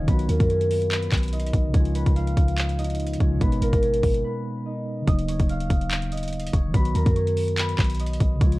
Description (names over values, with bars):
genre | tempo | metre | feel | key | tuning
hip hop, trap | 144 BPM | 4/4 | half-time | unclear | A4 = 439 Hz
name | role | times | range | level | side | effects
concert harp | melody | 0.0-8.6 s | Bb3 to F6 | -28 LUFS | equal | none
mellow tine electric piano | accompaniment | 0.0-8.6 s | Cb3 to F#4 | -28 LUFS | equal | medium stereo tremolo
clean 808-style bass | bass | 0.0-8.6 s | Eb1 to F#2 | -25 LUFS | equal | none
trap drum kit | drums | 0.1-8.6 s | handclaps, hi-hat, kick drum | -24 LUFS | equal | none
room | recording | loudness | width
little or no reverb | worn, warbling old tape, cassette tape, warbly pitch drift | -20 LUFS | side -20 dB against mid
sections
0.0-5.1 A section; 5.1-8.6 B section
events
break 4.2-5.1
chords
0.1 B; 1.7 Db; 3.4 Abmadd9; 5.1 Ebm7; 6.7 B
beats
| 0.08 0.49 0.91 1.33 | 1.75 2.16 2.58 3.00 | 3.41 3.83 4.25 4.66 | 5.08 5.50 5.91 6.33 | 6.75 7.16 7.58 8.00 | 8.41